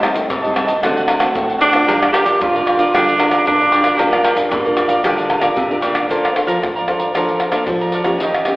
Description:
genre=samba and choro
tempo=114 BPM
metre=4/4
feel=straight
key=G minor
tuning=A4 = 444 Hz
part: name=breathy tenor saxophone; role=second line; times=0.0-5.0 s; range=Bb3 to G4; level=-15 LUFS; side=right 1 dB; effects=none
part: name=cavaquinho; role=accompaniment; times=0.0-8.6 s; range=D4 to Bb5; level=-21 LUFS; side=right 1 dB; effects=none
part: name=nylon-string guitar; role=accompaniment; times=0.0-8.6 s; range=A2 to C5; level=-22 LUFS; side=equal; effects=none
part: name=agogo bells, egg shaker, pandeiro, tamborim and surdo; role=percussion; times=0.0-8.6 s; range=none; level=-19 LUFS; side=equal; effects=none
part: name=nylon-string guitar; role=bass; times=0.1-8.4 s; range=G2 to Bb3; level=-23 LUFS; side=equal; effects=none
room=wet recital hall reverb, RT60 1.9 s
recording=recorded in a church or concert hall, telephone sound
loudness=-13 LUFS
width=side -20 dB against mid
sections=0.0-6.1 A section; 6.1-8.6 B section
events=tenor saxophone solo 0.0-6.1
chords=0.0 Am7b5; 0.8 D7; 1.9 Gm7; 6.1 Bbmaj9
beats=0.30 0.83 1.35 | 1.88 2.41 2.94 3.46 | 3.99 4.52 5.04 5.57 | 6.10 6.63 7.16 7.68 | 8.21

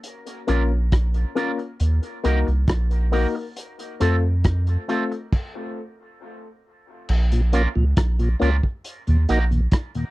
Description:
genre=dub reggae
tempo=68 BPM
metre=4/4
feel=straight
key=Bb harmonic minor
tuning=A4 = 442 Hz
part: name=vintage drum kit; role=drums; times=0.0-10.1 s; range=crash cymbal, hi-hat, kick drum, rim click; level=-22 LUFS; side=equal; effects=none
part: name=electric guitar with an envelope filter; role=accompaniment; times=0.5-9.4 s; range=A3 to Bb4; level=-30 LUFS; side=right 5 dB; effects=dub echo
part: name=dark baby grand piano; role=stabs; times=0.5-5.1 s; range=A3 to Bb4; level=-28 LUFS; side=left 5 dB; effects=dub echo
part: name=soft dub sub bass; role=bass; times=0.5-9.7 s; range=Bb1 to F2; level=-19 LUFS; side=equal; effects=none
part: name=mellow tonewheel organ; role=accompaniment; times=7.3-10.0 s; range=Eb2 to Gb4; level=-22 LUFS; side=left 1 dB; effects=slow rotary speaker
room=little or no reverb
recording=dry, close 1970s-style studio recording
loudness=-19 LUFS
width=side -19 dB against mid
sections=0.0-7.1 A section; 7.1-10.1 B section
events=stop 5.3-7.1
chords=0.0 Bbm; 1.8 Ebm; 3.6 F; 5.3 N.C.; 7.1 Bbm; 8.8 Ebm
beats=| 0.04 0.92 1.80 2.68 | 3.56 4.45 5.33 6.21 | 7.09 7.97 8.85 9.73

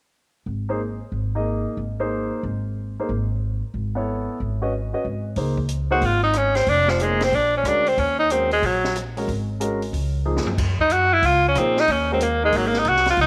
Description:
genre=jazz, small-group swing and bop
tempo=184 BPM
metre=4/4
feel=swing 64% on 8ths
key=unclear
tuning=A4 = 440 Hz
part: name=upright bass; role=bass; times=0.5-13.3 s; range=F1 to Bb2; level=-28 LUFS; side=equal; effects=none
part: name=warm grand piano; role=accompaniment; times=0.7-12.8 s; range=F3 to Eb5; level=-30 LUFS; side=equal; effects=none
part: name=open jazz drum kit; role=drums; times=5.4-13.3 s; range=crash cymbal, hi-hat, kick drum, rim click, snare drum, toms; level=-32 LUFS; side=equal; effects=none
part: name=clear tenor saxophone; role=melody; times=5.9-13.3 s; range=F3 to Gb4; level=-20 LUFS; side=equal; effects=none
room=moderate echo chamber reverb, RT60 1.6 s, small room ambience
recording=none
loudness=-22 LUFS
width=mono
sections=0.1-5.4 A section; 5.4-13.3 B section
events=drum fill 10.3-10.6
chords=0.1 Abadd9; 2.8 N.C.; 4.1 Gbm7; 4.7 Cbadd9; 5.4 Dbsus2; 6.7 Fm7; 7.3 Bb7alt; 8.0 Ebm7; 9.3 Absus2; 9.9 Db; 10.6 Gbmaj9; 11.9 Ebm7; 12.5 Abadd9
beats=| 0.14 0.47 0.80 1.12 | 1.45 1.78 2.10 2.43 | 2.76 3.08 3.41 3.74 | 4.06 4.39 4.71 5.04 | 5.37 5.69 6.02 6.35 | 6.67 7.00 7.32 7.65 | 7.97 8.30 8.63 8.95 | 9.28 9.60 9.93 10.26 | 10.58 10.90 11.23 11.56 | 11.88 12.21 12.53 12.86 | 13.18

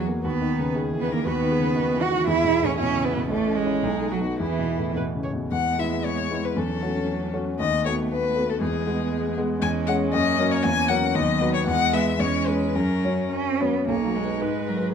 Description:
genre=quick classical-period movement for piano quartet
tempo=116 BPM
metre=2/4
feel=rubato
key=E major, B major from 9.6 s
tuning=A4 = 440 Hz
part: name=rich violin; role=melody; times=0.0-14.9 s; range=E4 to G#5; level=-27 LUFS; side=left 7 dB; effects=none
part: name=rich cello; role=second line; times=0.0-14.9 s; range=E3 to F#4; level=-27 LUFS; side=right 7 dB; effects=none
part: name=warm grand piano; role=accompaniment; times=0.0-14.9 s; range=A1 to C#5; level=-25 LUFS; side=left 2 dB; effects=none
part: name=warm viola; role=accompaniment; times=0.0-14.9 s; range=B3 to C#5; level=-32 LUFS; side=right 3 dB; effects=none
room=moderate large studio reverb, RT60 1.1 s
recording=none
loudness=-21 LUFS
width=side -7 dB against mid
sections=0.0-5.5 A section; 5.5-13.9 B section; 13.9-14.9 A section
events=none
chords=0.2 B/D#; 2.3 E; 3.3 A; 3.8 B7; 4.4 E; 6.6 F#m7/E; 7.6 B7/D#; 8.6 E; 9.6 C#m/E; 10.1 F#; 10.6 F#7/E; 11.2 B/D#; 11.7 E; 12.2 C#m/E; 12.8 F#; 13.9 B; 14.4 G#m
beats=| 0.25 0.75 | 1.25 1.76 | 2.27 2.79 | 3.31 3.84 | 4.40 4.96 | 5.52 6.04 | 6.56 7.07 | 7.59 8.10 | 8.61 9.11 | 9.62 10.13 | 10.64 11.15 | 11.67 12.21 | 12.76 13.33 | 13.89 14.42 | 14.94

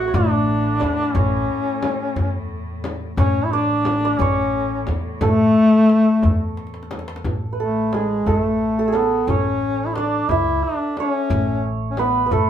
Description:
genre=Persian modal ensemble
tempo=59 BPM (dotted quarters)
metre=6/8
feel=straight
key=A dastgah mahur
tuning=A4 = 440 Hz
part: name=warm duduk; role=melody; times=0.0-12.5 s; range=G#3 to F#4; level=-19 LUFS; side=left 2 dB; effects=none
part: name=santur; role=second line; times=0.0-12.5 s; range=G#4 to F#5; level=-24 LUFS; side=right 6 dB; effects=none
part: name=upright bass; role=bass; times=0.0-12.5 s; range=A1 to E2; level=-25 LUFS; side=equal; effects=none
part: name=warm studio cello section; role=drone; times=0.0-7.3 s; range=A2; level=-32 LUFS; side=left 3 dB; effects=none
part: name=frame drum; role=percussion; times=0.1-12.5 s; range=none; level=-28 LUFS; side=left 1 dB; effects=none
part: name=tombak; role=percussion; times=0.1-12.5 s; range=none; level=-24 LUFS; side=equal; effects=none
room=wet studio reverb, RT60 0.6 s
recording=band playing live in one room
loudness=-17 LUFS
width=side -10 dB against mid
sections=0.0-7.2 A section; 7.2-12.5 B section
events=drum fill 6.6-7.2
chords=none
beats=0.14 | 1.15 2.17 | 3.18 4.20 | 5.21 6.23 | 7.24 8.26 | 9.28 10.29 | 11.31 12.32

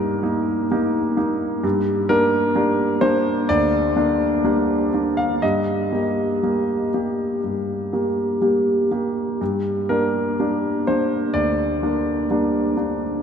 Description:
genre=neoclassical minimalist piano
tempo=60-66 BPM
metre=4/4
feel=rubato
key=G minor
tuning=A4 = 445 Hz
part: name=warm concert grand piano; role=solo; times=0.0-13.2 s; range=D2 to F5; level=-18 LUFS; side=equal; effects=none
room=wet cathedral reverb, RT60 5.7 s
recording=in a vast, echoing space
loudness=-18 LUFS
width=side -7 dB against mid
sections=0.0-13.2 A section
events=none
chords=0.0 Eb/G; 1.6 Gm; 5.4 Eb/G; 9.4 Gm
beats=0.71 | 1.64 2.55 3.49 4.44 | 5.42 6.43 7.42 8.41 | 9.40 10.38 11.34 12.29

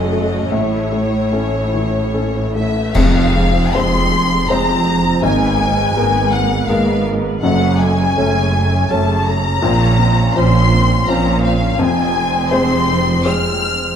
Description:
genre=cinematic, emotional film score for orchestra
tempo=73-84 BPM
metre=3/4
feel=rubato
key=unclear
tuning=A4 = 436 Hz
part: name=warm symphonic violin section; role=melody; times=0.0-14.0 s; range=Db5 to F6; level=-22 LUFS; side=left 4 dB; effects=none
part: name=clear chamber violin section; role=second line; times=0.0-14.0 s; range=C#5 to F6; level=-22 LUFS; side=left 2 dB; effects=none
part: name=felt-muted upright piano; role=accompaniment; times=0.0-14.0 s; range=F1 to A5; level=-19 LUFS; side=left 2 dB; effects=none
part: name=warm symphonic viola section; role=accompaniment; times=0.0-13.9 s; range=Ab3 to Db5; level=-24 LUFS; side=right 1 dB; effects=none
part: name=clear studio cello section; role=bass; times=0.0-13.9 s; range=F2 to Bb2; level=-20 LUFS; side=right 2 dB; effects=none
part: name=rich symphonic double bass section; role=bass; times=0.0-13.9 s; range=F1 to Bb1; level=-20 LUFS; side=right 2 dB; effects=none
part: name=cymbal swell, clash cymbals and concert bass drum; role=percussion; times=0.5-4.5 s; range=none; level=-21 LUFS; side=equal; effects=none
room=moderate scoring stage reverb, RT60 1.8 s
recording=dark, warm production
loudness=-13 LUFS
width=side -8 dB against mid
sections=0.0-2.9 A section; 2.9-14.0 B section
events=band accent 2.9-3.7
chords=0.0 Gbm; 0.5 A; 2.9 Fm; 5.2 Abmadd9; 7.4 Gbmadd9; 9.6 Bbmadd9; 11.8 Fm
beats=| 0.51 1.32 2.14 | 2.94 3.75 4.49 | 5.22 5.95 6.68 | 7.42 8.16 8.89 | 9.62 10.35 11.07 | 11.78 12.50 13.25

